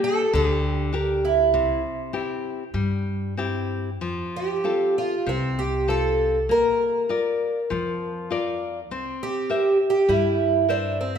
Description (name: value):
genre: fado-style ballad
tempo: 99 BPM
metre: 4/4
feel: rubato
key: unclear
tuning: A4 = 439 Hz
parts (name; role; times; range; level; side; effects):
- fingerpicked twelve-string acoustic guitar; melody; 0.0-11.2 s; C4 to Bb4; -21 LUFS; right 2 dB; none
- nylon-string guitar; accompaniment; 0.0-11.2 s; C3 to E5; -28 LUFS; left 4 dB; none
- upright bass; bass; 0.3-11.2 s; Bb1 to G2; -28 LUFS; equal; none
room: moderate scoring stage reverb, RT60 1.7 s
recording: minimal, uncompressed stereo recording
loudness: -21 LUFS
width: side -7 dB against mid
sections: 0.0-11.2 A section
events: none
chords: 0.0 Gm; 1.5 C; 4.0 F; 6.5 Bb; 8.9 C7